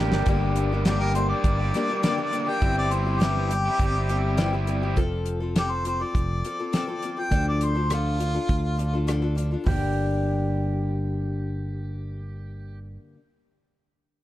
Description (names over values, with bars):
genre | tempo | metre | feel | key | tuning
folk rock and heartland rock | 102 BPM | 4/4 | straight | G dorian | A4 = 439 Hz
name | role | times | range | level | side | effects
pedal steel guitar | second line | 0.0-0.3, 9.7-12.8 s | G4 | -35 LUFS | right 6 dB | none
picked steel-string acoustic guitar | accompaniment | 0.0-13.2 s | G2 to A4 | -30 LUFS | left 4 dB | none
raw garage guitar | riff | 0.0-5.0 s | G2 to Bb4 | -30 LUFS | right 2 dB | overdrive
fingered electric bass | bass | 0.0-13.0 s | F1 to D2 | -26 LUFS | equal | none
damped 70s drum kit | drums | 0.1-9.8 s | hi-hat, kick drum, rim click, snare drum, toms | -26 LUFS | equal | none
warm harmonica | melody | 0.9-9.1 s | F4 to G5 | -28 LUFS | left 1 dB | none
room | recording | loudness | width
light reverb, small room ambience | dark, warm production | -22 LUFS | side -14 dB against mid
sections
0.3-9.7 A section; 9.7-12.0 B section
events
drum fill 0.0; harmonica solo 0.3-9.7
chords
0.3 Gm; 2.6 C/G; 5.0 F; 7.3 Dm; 9.7 Gm